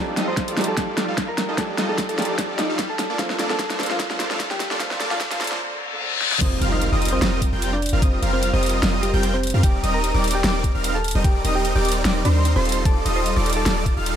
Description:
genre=future bass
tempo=149 BPM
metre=4/4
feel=swing 54% on 16ths, half-time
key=unclear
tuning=A4 = 439 Hz
part: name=thumb-piano-like synth pluck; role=melody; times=0.0-13.7 s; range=G3 to C6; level=-28 LUFS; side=right 1 dB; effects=chorus, sidechain pumping, tape echo
part: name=felt-muted upright piano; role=accompaniment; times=0.0-6.4 s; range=F3 to A4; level=-32 LUFS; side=right 3 dB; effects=sidechain pumping, tape echo
part: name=supersaw chords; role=riff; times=0.0-14.2 s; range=G3 to G5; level=-25 LUFS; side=right 1 dB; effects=sidechain pumping, low-pass filter
part: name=riser, reverse cymbal and impact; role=sound effects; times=0.0-8.0 s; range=none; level=-29 LUFS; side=left 3 dB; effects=none
part: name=pop drum kit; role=drums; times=0.2-14.2 s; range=crash cymbal, hi-hat, snare drum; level=-25 LUFS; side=equal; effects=overdrive
part: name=electronic kick drum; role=drums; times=0.4-13.9 s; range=none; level=-22 LUFS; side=equal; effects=overdrive
part: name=airy dreamy lead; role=arpeggios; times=6.4-14.2 s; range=C6 to G6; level=-29 LUFS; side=equal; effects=chorus, sidechain pumping
part: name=warm 808-style bass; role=bass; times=6.4-14.2 s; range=Eb1 to F2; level=-22 LUFS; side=equal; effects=sidechain pumping
room=light reverb, digital ambience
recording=high-pass filter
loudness=-19 LUFS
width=side -9 dB against mid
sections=0.0-6.4 A section; 6.4-14.2 B section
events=build-up 0.0-6.4; drum fill 0.0-5.6, 6.2; filter sweep on supersaw synth 0.0-6.4; filter sweep 0.0-6.4; reverse cymbal 5.6-6.4; drop 6.4-14.2; impact 6.4-8.0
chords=0.0 Ebmaj9#11; 3.0 Bbmaj9; 6.4 F9sus4; 9.6 Ebmaj9#11

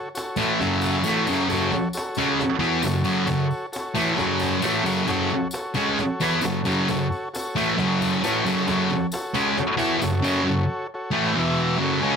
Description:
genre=garage rock duo or trio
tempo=134 BPM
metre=4/4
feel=straight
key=F# minor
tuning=A4 = 441 Hz
part: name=combo organ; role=sustained chords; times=0.0-12.2 s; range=E4 to E5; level=-29 LUFS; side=equal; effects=none
part: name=tambourine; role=percussion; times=0.1-10.3 s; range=none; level=-39 LUFS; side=left 3 dB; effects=none
part: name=cajon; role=drums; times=0.2-10.1 s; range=none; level=-36 LUFS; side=equal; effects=none
part: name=thick fuzz guitar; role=riff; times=0.4-12.2 s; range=E2 to E4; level=-20 LUFS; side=equal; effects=distortion
room=light reverb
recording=none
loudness=-20 LUFS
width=side -6 dB against mid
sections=0.0-12.2 A section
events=none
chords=0.0 F#m; 11.4 E5

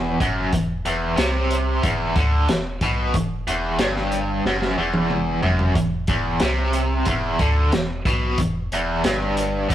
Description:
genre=psychedelic rock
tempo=92 BPM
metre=4/4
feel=straight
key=E minor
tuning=A4 = 440 Hz
part: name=biting overdriven guitar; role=riff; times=0.0-9.7 s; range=E2 to D3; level=-22 LUFS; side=equal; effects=tremolo
part: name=warm sub bass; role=bass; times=0.0-9.7 s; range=E1 to D2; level=-25 LUFS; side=equal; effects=none
part: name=crunchy breakbeat drum kit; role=drums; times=0.2-9.7 s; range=hi-hat, kick drum, snare drum, toms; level=-24 LUFS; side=equal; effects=none
room=light reverb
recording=rough rehearsal-room recording, tube saturation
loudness=-19 LUFS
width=side -12 dB against mid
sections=0.0-9.7 A section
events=drum fill 4.5-5.8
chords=0.0 Em

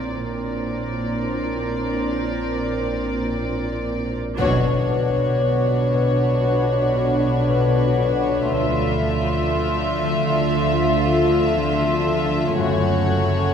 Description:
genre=cinematic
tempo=58 BPM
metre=4/4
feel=straight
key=unclear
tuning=A4 = 440 Hz
part: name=dark studio violin section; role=melody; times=0.0-13.5 s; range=C#5 to E5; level=-27 LUFS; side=left 2 dB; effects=none
part: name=rich studio viola section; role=accompaniment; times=0.0-13.5 s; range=A3 to A#4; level=-30 LUFS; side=right 2 dB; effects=none
part: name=deep dark ambient pad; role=sustained chords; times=0.0-13.5 s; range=D4 to B5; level=-29 LUFS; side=right 1 dB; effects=chorus, built-in reverb
part: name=warm symphonic cello section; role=bass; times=0.0-13.5 s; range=F#2 to D3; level=-26 LUFS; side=right 2 dB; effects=none
part: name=metallic inharmonic drone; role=drone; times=0.0-13.5 s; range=F#1 to D2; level=-29 LUFS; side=right 1 dB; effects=chorus, built-in reverb, phaser
part: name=dark studio double bass section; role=bass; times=0.1-13.5 s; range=F#1 to D2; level=-28 LUFS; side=right 2 dB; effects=none
part: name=warm symphonic violin section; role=second line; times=4.4-13.5 s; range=F4 to F#4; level=-27 LUFS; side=left 1 dB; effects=none
part: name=mellow French horn section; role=sustained chords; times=4.4-13.5 s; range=D3 to C#5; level=-24 LUFS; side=left 2 dB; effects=none
part: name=concert harp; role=riff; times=4.4-13.5 s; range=F#2 to D4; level=-25 LUFS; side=left 6 dB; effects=none
part: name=impact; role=sound effects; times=4.4-8.5 s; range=none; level=-30 LUFS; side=equal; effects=none
room=wet scoring stage reverb, RT60 1.6 s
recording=recorded in a church or concert hall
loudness=-18 LUFS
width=side -7 dB against mid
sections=0.0-4.4 A section; 4.4-13.5 B section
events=band accent 4.4-5.4; impact 4.4-8.5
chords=0.0 A#add9; 4.4 Bmadd9; 8.5 Dmadd9; 12.6 F#m

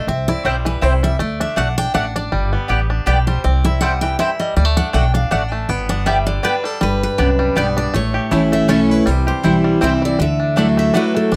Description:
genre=bluegrass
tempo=160 BPM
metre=3/4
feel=swing 55% on 8ths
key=G major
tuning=A4 = 440 Hz
part: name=bluegrass banjo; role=melody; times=0.0-11.4 s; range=D3 to G4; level=-26 LUFS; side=equal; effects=none
part: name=picked steel-string acoustic guitar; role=accompaniment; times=0.0-11.4 s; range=F#2 to A5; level=-21 LUFS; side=equal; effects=none
part: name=upright bass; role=bass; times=0.1-11.4 s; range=G1 to D2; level=-22 LUFS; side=equal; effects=none
part: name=mandolin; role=stabs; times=0.4-11.0 s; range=A3 to A5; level=-22 LUFS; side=equal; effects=none
part: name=picked steel-string acoustic guitar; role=melody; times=6.4-11.4 s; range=A4 to E5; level=-24 LUFS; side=equal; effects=none
room=light reverb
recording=close, detailed microphones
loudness=-17 LUFS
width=mono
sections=0.0-6.8 A section; 6.8-11.4 B section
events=steel-string acoustic guitar solo 0.0-6.8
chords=0.1 C; 1.2 D; 2.3 G; 3.4 C; 4.6 D; 5.7 G; 7.9 A; 9.1 C; 10.2 Dadd9

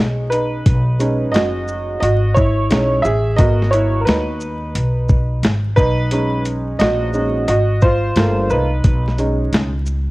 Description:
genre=hip hop, jazz-hop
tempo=88 BPM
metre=4/4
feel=swing 65% on 16ths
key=B major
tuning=A4 = 436 Hz
part: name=warm upright piano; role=accompaniment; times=0.0-9.7 s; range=G#3 to E5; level=-18 LUFS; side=right 1 dB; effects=none
part: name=upright bass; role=bass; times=0.0-10.1 s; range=F#1 to D#2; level=-19 LUFS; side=equal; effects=none
part: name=dusty soul sampler-style drum kit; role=drums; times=0.3-10.1 s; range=hi-hat, kick drum, shaker, snare drum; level=-16 LUFS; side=equal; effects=cassette tape
room=studio reverb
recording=home recording on cassette, vinyl crackle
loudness=-14 LUFS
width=side -20 dB against mid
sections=0.7-10.1 A section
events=upright piano solo 0.7-10.1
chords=0.0 B69; 3.4 G#m7; 5.8 B69; 8.2 Gm9; 8.8 B69

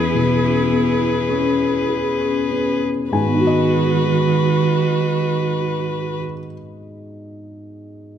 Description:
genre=neoclassical piano and strings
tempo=31-37 BPM (dotted quarters)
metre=6/8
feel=rubato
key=G# minor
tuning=A4 = 440 Hz
part: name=rich violin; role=melody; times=0.0-6.2 s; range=B4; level=-24 LUFS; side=left 7 dB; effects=none
part: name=rich cello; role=second line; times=0.0-6.2 s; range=D#3 to E4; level=-22 LUFS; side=right 6 dB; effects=none
part: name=felt-muted upright piano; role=accompaniment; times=0.0-8.2 s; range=E2 to G#5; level=-21 LUFS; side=left 2 dB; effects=none
part: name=rich viola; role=accompaniment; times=0.0-6.2 s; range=F#4 to G#4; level=-24 LUFS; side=right 4 dB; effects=none
part: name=marimba with hard mallets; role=arpeggios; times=0.0-2.7 s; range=C#4 to B4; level=-27 LUFS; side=left 2 dB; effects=slapback echo
room=moderate recital hall reverb, RT60 1.7 s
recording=dark, warm production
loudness=-16 LUFS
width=side -9 dB against mid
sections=0.0-3.1 A section; 3.1-6.9 B section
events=slowing down 0.0-3.1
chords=0.0 C#m7/E; 3.1 G#m7

